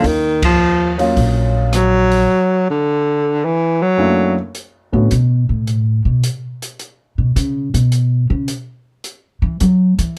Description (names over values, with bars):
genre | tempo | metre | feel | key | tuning
jazz, small-group swing and bop | 107 BPM | 4/4 | swing 69% on 8ths | B minor from 4.5 s | A4 = 440 Hz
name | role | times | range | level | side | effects
breathy baritone saxophone | melody | 0.0-4.4 s | D3 to Gb3 | -16 LUFS | equal | none
warm upright piano | accompaniment | 0.0-5.1 s | Gb2 to F#4 | -20 LUFS | equal | none
upright bass | bass | 0.0-10.2 s | Bb1 to F#3 | -18 LUFS | equal | none
open jazz drum kit | drums | 0.0-10.1 s | hi-hat, kick drum, ride cymbal, rim click | -26 LUFS | equal | none
room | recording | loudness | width
light reverb | none | -16 LUFS | mono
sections
0.0-4.5 A section; 4.5-10.2 B section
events
band accent 0.3; upright bass solo 4.5-10.2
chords
0.0 Ebm9; 2.3 Gb7alt; 4.5 B7(no3); 6.8 Bsus2; 9.0 Esus2